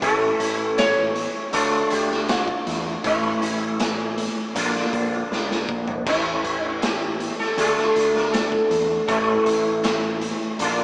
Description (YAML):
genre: psychedelic rock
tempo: 79 BPM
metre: 4/4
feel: straight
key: unclear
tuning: A4 = 440 Hz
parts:
  - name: sitar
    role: melody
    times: 0.0-10.8 s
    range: E4 to C#5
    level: -22 LUFS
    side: equal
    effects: none
  - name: twangy electric guitar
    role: riff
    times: 0.0-10.8 s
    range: A2 to F4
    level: -24 LUFS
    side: equal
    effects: rotary speaker
  - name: growling picked electric bass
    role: bass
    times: 0.0-10.8 s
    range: A1 to E2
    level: -31 LUFS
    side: equal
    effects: overdrive
  - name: raw garage drum kit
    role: drums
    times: 0.0-10.8 s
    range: crash cymbal, hi-hat, kick drum, snare drum, splash cymbal, toms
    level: -26 LUFS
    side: equal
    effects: none
room: moderate stone room reverb, RT60 1.1 s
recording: band playing live in one room, small speaker sound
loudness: -19 LUFS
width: side -36 dB against mid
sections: 0.0-10.8 A section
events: drum fill 5.3-6.1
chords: 0.0 A; 1.5 Dm; 3.0 A; 4.6 Bb; 6.1 A; 7.6 Dm; 9.1 A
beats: | 0.02 0.78 1.54 2.29 | 3.05 3.80 4.56 5.32 | 6.07 6.83 7.58 8.34 | 9.09 9.84 10.60